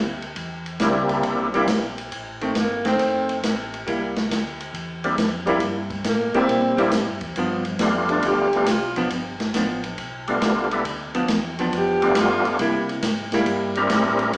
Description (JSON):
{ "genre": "soul jazz organ trio", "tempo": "137 BPM", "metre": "4/4", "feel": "swing 68% on 8ths", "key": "C mixolydian", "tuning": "A4 = 445 Hz", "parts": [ { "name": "mellow tonewheel organ", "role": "bass", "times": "0.0-14.4 s", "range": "F1 to C3", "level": "-32 LUFS", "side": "equal", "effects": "slow rotary speaker" }, { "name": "open jazz drum kit", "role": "drums", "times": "0.2-14.4 s", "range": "hi-hat, kick drum, ride cymbal, snare drum", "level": "-26 LUFS", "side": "equal", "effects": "none" }, { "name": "percussive tonewheel organ", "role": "melody", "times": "0.8-1.7, 5.0-14.3 s", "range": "G3 to Bb4", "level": "-22 LUFS", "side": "equal", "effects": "slow rotary speaker, overdrive, chorus vibrato" }, { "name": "archtop guitar, miked and amplified", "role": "accompaniment", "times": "0.8-13.9 s", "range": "Eb3 to E4", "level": "-24 LUFS", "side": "equal", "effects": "none" }, { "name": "breathy tenor saxophone", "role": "melody", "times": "2.6-3.4, 6.1-9.0, 11.6-12.5 s", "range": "Bb3 to G4", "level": "-22 LUFS", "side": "equal", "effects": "none" } ], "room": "wet large studio reverb, RT60 1.0 s", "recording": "heard from further back in the room, small speaker sound", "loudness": "-19 LUFS", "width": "side -28 dB against mid", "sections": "0.0-14.4 A section", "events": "tenor saxophone solo 0.0-14.4", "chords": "0.0 C7; 2.1 F7; 3.9 C7; 7.4 G7; 12.6 C7" }